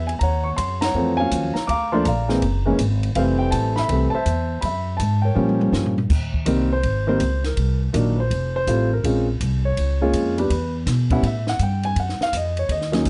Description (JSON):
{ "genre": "jazz piano trio", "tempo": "163 BPM", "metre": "4/4", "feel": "swing 66% on 8ths", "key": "Ab major from 6.1 s", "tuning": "A4 = 438 Hz", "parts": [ { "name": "warm grand piano", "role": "melody", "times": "0.0-13.1 s", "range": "Eb3 to D6", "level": "-24 LUFS", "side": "equal", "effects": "none" }, { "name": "upright bass", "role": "bass", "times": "0.0-13.1 s", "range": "F1 to B2", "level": "-24 LUFS", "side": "equal", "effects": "none" }, { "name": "compact cocktail drum kit", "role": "drums", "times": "0.1-13.1 s", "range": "crash cymbal, hi-hat, kick drum, ride cymbal, snare drum, toms", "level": "-29 LUFS", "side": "equal", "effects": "none" } ], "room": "light reverb", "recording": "dark, warm production, nothing above 10.8 kHz", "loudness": "-21 LUFS", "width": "mono", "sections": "0.0-6.1 A section; 6.1-13.1 B section", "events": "band accent 0.8; drum fill 5.4-6.1; grand piano solo 6.1-13.1", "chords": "0.2 Ebm9; 1.7 Bbadd9; 2.4 Gbadd9; 3.2 Fmaj7; 4.6 Gb5; 5.4 Gm7b5; 6.1 Abmaj7; 7.6 Cm7b5; 8.3 F; 9.0 Bbm9; 10.5 E5; 11.2 Emadd11; 12.0 Ebm9" }